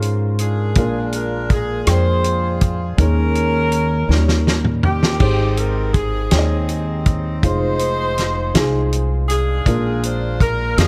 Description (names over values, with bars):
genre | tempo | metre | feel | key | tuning
slow gospel | 54 BPM (dotted quarters) | 6/8 | straight | Ab major | A4 = 440 Hz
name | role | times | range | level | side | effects
warm upright piano | accompaniment | 0.0-10.9 s | Ab2 to G5 | -26 LUFS | equal | none
upright bass | bass | 0.0-10.9 s | F1 to Ab2 | -22 LUFS | equal | none
warm soul drum kit | drums | 0.0-10.9 s | crash cymbal, hi-hat, kick drum, rim click, snare drum, toms | -21 LUFS | equal | none
bright saxophone section | melody | 0.4-10.9 s | C4 to C5 | -25 LUFS | equal | analog delay
room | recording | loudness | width
light reverb | echo-heavy mix | -18 LUFS | mono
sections
0.0-10.9 A section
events
drum fill 4.1-5.2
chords
0.0 Dbmaj7/Ab; 0.8 Bb7; 3.0 Eb7sus4; 4.1 Eb7; 5.2 Abmaj7; 7.4 Fm7; 9.7 Bb7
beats
| 0.76 1.87 | 2.98 4.09 | 5.20 6.32 | 7.43 8.54 | 9.66 10.77